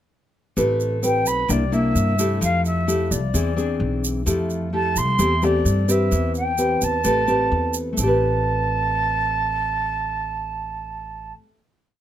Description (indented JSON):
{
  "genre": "bossa nova",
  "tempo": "130 BPM",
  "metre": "4/4",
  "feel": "straight",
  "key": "A minor",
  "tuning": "A4 = 436 Hz",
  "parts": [
    { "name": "nylon-string guitar", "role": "accompaniment", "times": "0.6-11.6 s", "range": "C3 to B4", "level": "-22 LUFS", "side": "left 1 dB", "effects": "none" },
    { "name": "upright bass", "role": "bass", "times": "0.6-11.3 s", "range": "A1 to G2", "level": "-24 LUFS", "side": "equal", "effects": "none" },
    { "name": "egg shaker", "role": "percussion", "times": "0.6-8.1 s", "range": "none", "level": "-29 LUFS", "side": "right 7 dB", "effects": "none" },
    { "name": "mellow concert flute", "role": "melody", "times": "1.0-11.3 s", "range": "D5 to C6", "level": "-24 LUFS", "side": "right 2 dB", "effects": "none" }
  ],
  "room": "little or no reverb",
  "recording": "close, detailed microphones",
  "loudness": "-19 LUFS",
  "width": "side -11 dB against mid",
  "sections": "0.6-8.0 A section; 8.0-11.7 final chord",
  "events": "none",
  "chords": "0.6 Am9; 1.5 C9; 2.4 Fmaj9; 3.3 E7b13; 4.3 Fmaj9; 5.2 C6/E; 6.1 Am9/E; 7.0 Am9",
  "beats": "| 0.57 1.03 1.50 1.96 | 2.42 2.88 3.34 3.81 | 4.27 4.73 5.20 5.66 | 6.12 6.58 7.05 7.51 | 7.97 8.43 8.90 9.36 | 9.82 10.28 10.74 11.21"
}